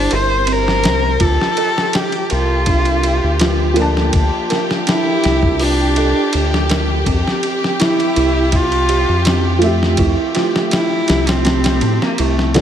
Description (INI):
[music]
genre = trip hop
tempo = 82 BPM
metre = 4/4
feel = straight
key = unclear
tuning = A4 = 440 Hz
[part]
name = rich cello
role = melody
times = 0.0-12.6 s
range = A3 to C5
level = -19 LUFS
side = equal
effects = tape echo
[part]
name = felt-muted upright piano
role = accompaniment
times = 0.0-12.6 s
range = D3 to A5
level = -20 LUFS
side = equal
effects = tremolo, tape echo
[part]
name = dark studio violin section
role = sustained chords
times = 0.0-12.6 s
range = G4 to C5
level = -23 LUFS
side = left 1 dB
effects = none
[part]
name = dark detuned synth bell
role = arpeggios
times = 0.0-12.6 s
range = C4 to Bb4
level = -22 LUFS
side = right 4 dB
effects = chorus, vintage 12-bit sampler grit, ping-pong delay
[part]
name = round analog bass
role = bass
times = 0.0-12.6 s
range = G1 to A2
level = -18 LUFS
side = left 1 dB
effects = none
[part]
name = dusty soul sampler-style drum kit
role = drums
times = 0.1-12.6 s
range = hi-hat, kick drum, ride cymbal, snare drum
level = -19 LUFS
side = left 1 dB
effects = none
[sound]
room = light reverb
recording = none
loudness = -13 LUFS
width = side -9 dB against mid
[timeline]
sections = 0.0-12.6 A section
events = none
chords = 0.0 C7; 1.2 Bbmaj7; 7.1 Fmaj9